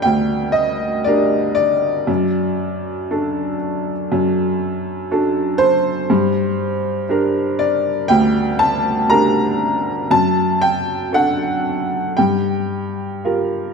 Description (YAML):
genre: classical, lyrical solo piano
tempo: 59 BPM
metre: 4/4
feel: rubato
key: G harmonic minor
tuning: A4 = 440 Hz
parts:
  - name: clear upright piano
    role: solo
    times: 0.0-13.7 s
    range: D2 to Bb5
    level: -16 LUFS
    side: equal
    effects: none
room: moderate scoring stage reverb, RT60 1.9 s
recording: minimal, uncompressed stereo recording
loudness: -16 LUFS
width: side -5 dB against mid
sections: 0.0-13.7 A section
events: none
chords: 0.0 Gm; 2.1 D/F#; 6.1 Gm; 10.1 D/F#; 12.2 Gm7